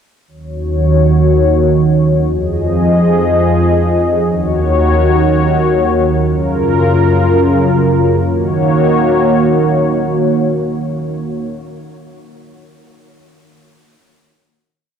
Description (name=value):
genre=hip hop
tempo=free time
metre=none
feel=none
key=Eb minor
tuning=A4 = 439 Hz
part: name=dark analog pad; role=solo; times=0.5-11.5 s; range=Eb2 to Eb5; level=-11 LUFS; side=equal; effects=chorus
room=light reverb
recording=dark, warm production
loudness=-10 LUFS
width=side -7 dB against mid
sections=0.3-8.2 verse; 8.2-12.2 final chord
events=none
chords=0.3 Ebm7; 2.3 Fm7; 4.2 Ebm7; 6.2 Gbmaj7; 8.2 Ebm7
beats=free time